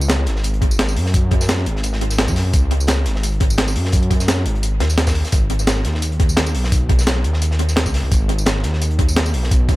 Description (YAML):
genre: liquid drum and bass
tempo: 172 BPM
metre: 4/4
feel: swing 54% on 16ths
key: unclear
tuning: A4 = 439 Hz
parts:
  - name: dark detuned saw bass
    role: bass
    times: 0.0-9.8 s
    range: G#1 to F#2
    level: -18 LUFS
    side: equal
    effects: none
  - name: breakbeat sampler-style drum kit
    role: drums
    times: 0.0-9.8 s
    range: hi-hat, snare drum, tambourine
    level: -21 LUFS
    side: equal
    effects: analog delay
  - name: crunchy breakbeat drum kit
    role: drums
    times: 0.1-9.8 s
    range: hi-hat, snare drum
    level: -29 LUFS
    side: equal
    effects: high-pass filter on hats, high-pass filter on snare, high-pass filter on room, analog delay
  - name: electronic kick drum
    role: drums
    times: 0.6-9.8 s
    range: none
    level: -16 LUFS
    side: equal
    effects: none
room: light reverb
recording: echo-heavy mix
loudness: -15 LUFS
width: side -18 dB against mid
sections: 0.0-9.8 A section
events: none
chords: none